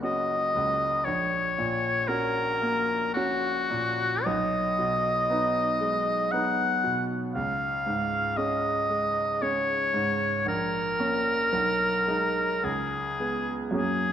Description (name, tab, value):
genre	classical, romantic duo for oboe and grand piano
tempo	52-59 BPM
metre	3/4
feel	rubato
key	F# major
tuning	A4 = 440 Hz
part	clear oboe	melody	0.0-14.1 s	F#4 to F#5	-26 LUFS	left 1 dB	none
part	bright grand piano	accompaniment	0.0-14.1 s	F#1 to F#4	-30 LUFS	right 2 dB	none
room	wet scoring stage reverb, RT60 1.8 s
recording	none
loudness	-24 LUFS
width	side -9 dB against mid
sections	0.0-14.1 A section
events	none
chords	0.0 F#; 1.1 F#/A#; 4.3 G#m/B; 7.4 C#; 10.5 A#m; 11.5 G#m/B; 12.6 C#5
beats	0.02 | 1.06 2.08 3.14 | 4.25 5.29 6.33 | 7.35 8.37 9.42 | 10.46 11.53 12.63 | 13.76